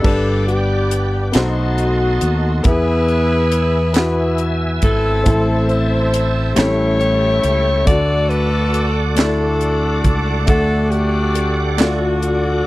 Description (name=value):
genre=slow gospel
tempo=46 BPM (dotted quarters)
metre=6/8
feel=straight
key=unclear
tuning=A4 = 439 Hz
part: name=clear saxophone section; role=melody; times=0.0-12.7 s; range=A3 to D5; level=-19 LUFS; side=left 2 dB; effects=none
part: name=warm grand piano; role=accompaniment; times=0.0-12.7 s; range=G2 to F#5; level=-21 LUFS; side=left 1 dB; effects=none
part: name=bright tonewheel organ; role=sustained chords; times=0.0-12.7 s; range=A4 to E6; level=-26 LUFS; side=right 2 dB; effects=chorus vibrato, slow rotary speaker
part: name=fingered electric bass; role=bass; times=0.0-12.6 s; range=G1 to E2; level=-19 LUFS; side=right 1 dB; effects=none
part: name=crisp fusion drum kit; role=drums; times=0.0-12.4 s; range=crash cymbal, hi-hat, kick drum, snare drum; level=-17 LUFS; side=equal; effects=none
part: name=group handclap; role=percussion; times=1.4-12.2 s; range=none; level=-25 LUFS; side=right 12 dB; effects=none
room=little or no reverb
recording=dry, close 1970s-style studio recording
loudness=-14 LUFS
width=side -18 dB against mid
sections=0.0-12.7 A section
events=none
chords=0.0 G; 1.4 B7b9; 2.7 E; 5.3 Am; 6.6 A7; 7.9 D